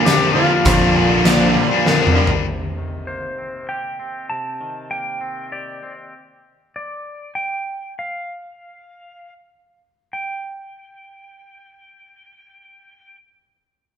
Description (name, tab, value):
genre	post-rock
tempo	79-100 BPM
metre	3/4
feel	straight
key	unclear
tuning	A4 = 441 Hz
part	clean lap steel guitar	melody	0.0-13.2 s	F4 to A5	-25 LUFS	equal	none
part	dark studio string section	sustained chords	0.0-2.4 s	G4 to Bb5	-30 LUFS	equal	none
part	felt-muted upright piano	arpeggios	0.0-2.5 s	Bb4 to D5	-28 LUFS	equal	none
part	twangy electric guitar	arpeggios	0.0-6.1 s	Bb2 to G4	-27 LUFS	left 3 dB	spring reverb
part	crunchy overdriven guitar	riff	0.0-2.5 s	Bb2 to D4	-19 LUFS	left 7 dB	spring reverb
part	distorted electric guitar	riff	0.0-2.3 s	Bb2 to D4	-22 LUFS	right 8 dB	overdrive
part	oversized low-tuned drum kit	drums	0.1-2.4 s	hi-hat, kick drum, snare drum, toms	-19 LUFS	equal	none
part	growling picked electric bass	bass	0.7-1.6 s	Bb1	-20 LUFS	equal	overdrive
room	wet large studio reverb, RT60 1.5 s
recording	band playing live in one room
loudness	-17 LUFS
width	side -8 dB against mid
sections	0.0-2.5 A section; 2.5-10.1 B section; 10.1-14.0 C section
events	drum fill 1.9-2.5; slowing down 6.1-10.1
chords	0.0 Bb6; 2.5 Cm7; 6.1 N.C.